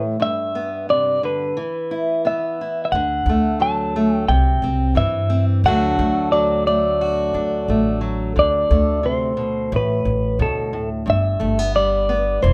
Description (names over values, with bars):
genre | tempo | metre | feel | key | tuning
acoustic folk duo or small band | 88 BPM | 4/4 | straight | D mixolydian | A4 = 440 Hz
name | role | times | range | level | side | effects
fingerpicked steel-string acoustic guitar | accompaniment | 0.0-12.5 s | G2 to A4 | -25 LUFS | equal | none
clean electric guitar | melody | 0.2-12.5 s | A4 to A5 | -22 LUFS | equal | harmonic tremolo
upright bass | bass | 2.9-12.5 s | E1 to G2 | -24 LUFS | equal | none
room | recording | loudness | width
moderate large studio reverb, RT60 0.9 s | none | -19 LUFS | mono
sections
0.0-8.4 A section; 8.4-12.5 A section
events
none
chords
0.2 G; 1.6 E5; 2.9 D; 4.3 C; 5.7 D; 9.7 Asus2; 11.1 G